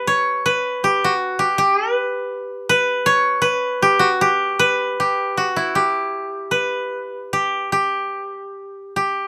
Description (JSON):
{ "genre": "japanese traditional", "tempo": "72-80 BPM", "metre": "4/4", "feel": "rubato", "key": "unclear", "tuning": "A4 = 441 Hz", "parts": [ { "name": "koto", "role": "solo", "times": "0.0-9.3 s", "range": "E4 to C#5", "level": "-20 LUFS", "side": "equal", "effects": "none" } ], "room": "light reverb", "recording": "close, detailed microphones", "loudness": "-19 LUFS", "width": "mono", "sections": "0.0-9.3 A section", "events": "none", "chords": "none" }